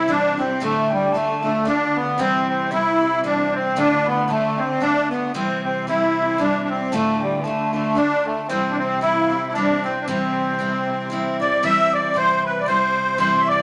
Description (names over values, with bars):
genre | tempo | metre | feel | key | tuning
celtic folk, Celtic waltz | 114 BPM | 3/4 | swing 56% on 8ths | C major | A4 = 440 Hz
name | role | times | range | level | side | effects
musette accordion | melody | 0.0-13.6 s | G3 to E5 | -22 LUFS | equal | none
bright baroque flute | second line | 0.0-13.6 s | C5 to E6 | -28 LUFS | equal | none
picked steel-string acoustic guitar | accompaniment | 0.0-13.6 s | D2 to F4 | -29 LUFS | equal | none
rich cello | bass | 0.0-13.6 s | C3 to D3 | -36 LUFS | equal | none
room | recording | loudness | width
wet studio reverb, RT60 0.8 s | none | -20 LUFS | mono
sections
0.0-11.6 A section; 11.6-13.6 B section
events
none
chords
0.0 C; 0.6 Dm; 2.2 C; 3.8 Dm; 5.3 C; 6.9 Dm; 8.5 C